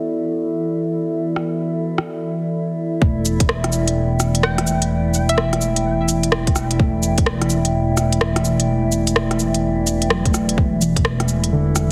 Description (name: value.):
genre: future garage.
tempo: 127 BPM.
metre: 4/4.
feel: swing 63% on 16ths.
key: E minor.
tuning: A4 = 440 Hz.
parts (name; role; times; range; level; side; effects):
muted felt-like synth keys; accompaniment; 0.0-11.9 s; D3 to A3; -28 LUFS; equal; chorus, sidechain pumping, tape echo.
warbly tape-like pad; sustained chords; 0.0-11.9 s; E3 to G5; -25 LUFS; equal; chorus, built-in reverb, sidechain pumping.
organic electronic drum kit; drums; 1.4-11.9 s; cabasa, hi-hat, rim click; -23 LUFS; equal; none.
dark detuned saw bass; bass; 3.0-11.9 s; E1; -23 LUFS; equal; sidechain pumping.
electronic kick drum; drums; 3.0-3.5, 6.5-7.3, 10.3-11.0 s; none; -19 LUFS; equal; none.
hollow square pluck; melody; 4.4-5.9 s; E5 to G5; -29 LUFS; equal; chorus, cassette tape, dub echo.
room: moderate lush hall reverb, RT60 1.8 s, digital ambience.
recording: heavily compressed radio sound, multiband compression.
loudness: -19 LUFS.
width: mono.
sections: 0.0-3.0 A section; 3.0-11.9 B section.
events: filter sweep on ambient pad 0.0-3.0.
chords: 0.0 Dadd9/E; 3.0 Em7; 10.6 Dadd9/E.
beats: 0.18 0.66 | 1.13 1.60 2.07 2.55 | 3.02 3.49 3.96 4.43 | 4.91 5.38 5.85 6.33 | 6.80 7.27 7.74 8.21 | 8.69 9.16 9.63 10.11 | 10.58 11.05 11.52.